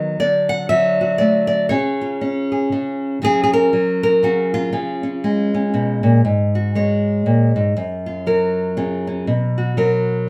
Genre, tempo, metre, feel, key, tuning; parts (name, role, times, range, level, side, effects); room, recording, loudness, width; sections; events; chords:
folk, solo fingerstyle acoustic guitar; 119 BPM; 3/4; swing 59% on 8ths; F# major; A4 = 436 Hz
nylon-string guitar; solo; 0.0-10.3 s; F#2 to F#5; -18 LUFS; equal
wet small room reverb, RT60 0.5 s; band playing live in one room; -18 LUFS; mono
0.0-6.2 A section; 6.2-10.3 B section
0.2 D; 1.7 C#; 3.2 F#/C#; 4.7 C#; 6.2 G#9sus4; 7.8 F#maj7; 9.3 Bmaj7(no3)